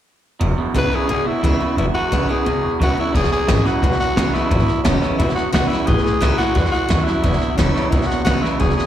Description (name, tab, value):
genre	rockabilly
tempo	176 BPM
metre	4/4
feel	straight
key	E major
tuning	A4 = 440 Hz
part	picked steel-string acoustic guitar	accompaniment	0.4-8.9 s	E2 to E4	-24 LUFS	left 3 dB	slapback echo
part	electric guitar through a small old amp	riff	0.4-8.9 s	E2 to F#3	-23 LUFS	right 5 dB	spring reverb, slapback echo
part	upright bass	bass	0.4-8.8 s	E1 to E2	-21 LUFS	equal	none
part	growling tenor saxophone	melody	0.8-8.9 s	C#4 to B4	-21 LUFS	left 2 dB	slapback echo
part	jazz brush drum kit	drums	3.1-8.8 s	crash cymbal, hi-hat, kick drum, snare drum	-21 LUFS	equal	none
room	light reverb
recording	live gig heard through the venue's PA, recital hall reverb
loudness	-16 LUFS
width	side -11 dB against mid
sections	0.4-3.1 A section; 3.1-8.9 B section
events	none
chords	0.4 E; 5.9 A; 7.2 E